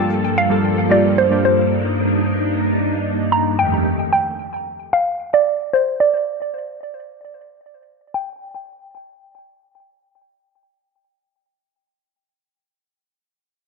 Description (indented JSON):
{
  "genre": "amapiano",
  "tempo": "112 BPM",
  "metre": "4/4",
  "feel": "straight",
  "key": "unclear",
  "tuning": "A4 = 440 Hz",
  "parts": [
    { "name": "mallet-like synth pluck", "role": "melody", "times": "0.0-11.7 s", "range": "C5 to Bb5", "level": "-19 LUFS", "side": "right 1 dB", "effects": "chorus, low-pass filter, tape echo" },
    { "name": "glassy digital keys", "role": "accompaniment", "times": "0.0-1.7 s", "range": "G3 to A4", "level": "-19 LUFS", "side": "right 1 dB", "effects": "chorus, low-pass filter" },
    { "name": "string machine, violins", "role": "sustained chords", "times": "0.0-3.8 s", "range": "F2 to A4", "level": "-19 LUFS", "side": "right 1 dB", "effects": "ensemble chorus, low-pass filter" }
  ],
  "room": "light reverb, digital ambience",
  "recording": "echo-heavy mix",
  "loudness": "-16 LUFS",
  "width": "side -4 dB against mid",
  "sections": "0.0-8.1 A section; 8.1-12.4 B section",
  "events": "filter sweep 0.0-8.1",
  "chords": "0.0 Gm9; 1.7 Cm9/G; 3.6 F9; 5.7 N.C."
}